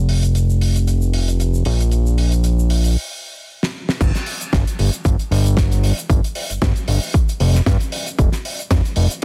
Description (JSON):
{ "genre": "nu-disco, nu disco", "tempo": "115 BPM", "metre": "4/4", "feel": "swing 55% on 16ths", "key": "unclear", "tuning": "A4 = 440 Hz", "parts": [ { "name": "fat analog bass", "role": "bass", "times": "0.0-9.1 s", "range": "F1 to G2", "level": "-18 LUFS", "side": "equal", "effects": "none" }, { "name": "damped 70s drum kit", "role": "drums", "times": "0.1-9.2 s", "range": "crash cymbal, hi-hat, shaker, snare drum", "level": "-27 LUFS", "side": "equal", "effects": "studio reverb" }, { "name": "electronic kick drum", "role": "drums", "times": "4.0-8.8 s", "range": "none", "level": "-20 LUFS", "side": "equal", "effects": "studio reverb" } ], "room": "little or no reverb", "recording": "dense, heavily limited modern master", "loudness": "-18 LUFS", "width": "mono", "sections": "0.0-4.0 A section; 4.0-9.2 B section", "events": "filter sweep on drum 0.0-4.0; stop 3.0-4.0; drum fill 3.6-4.0; drop 4.0-9.2", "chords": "none" }